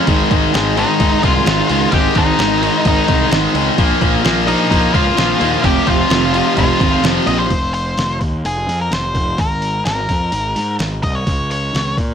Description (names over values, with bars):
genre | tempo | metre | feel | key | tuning
quiet-loud alternative rock | 129 BPM | 4/4 | straight | F minor | A4 = 439 Hz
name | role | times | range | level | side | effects
crunchy overdriven guitar | riff | 0.0-7.5 s | F2 to Bb3 | -18 LUFS | right 14 dB | harmonic tremolo
tight distorted guitar | riff | 0.0-7.5 s | F2 to Bb3 | -18 LUFS | left 16 dB | distortion
fuzz picked electric bass | bass | 0.1-12.1 s | F1 to Bb2 | -20 LUFS | equal | overdrive
trip hop sampler-style drum kit | drums | 0.1-12.1 s | crash cymbal, hi-hat, kick drum, snare drum | -19 LUFS | equal | none
octave-fuzz lead guitar | melody | 0.8-11.9 s | Eb4 to G5 | -19 LUFS | left 1 dB | distortion, analog delay
room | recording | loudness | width
light reverb | none | -13 LUFS | side -8 dB against mid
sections
0.0-7.5 A section; 7.5-12.1 B section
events
none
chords
0.1 Ab5; 3.8 Bb5; 5.6 F5; 9.4 Absus2; 11.3 Bbm/Db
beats
| 0.07 0.54 1.00 1.47 | 1.93 2.39 2.86 3.32 | 3.78 4.25 4.71 5.17 | 5.64 6.10 6.57 7.03 | 7.50 7.97 8.44 8.90 | 9.37 9.84 10.31 10.78 | 11.25 11.72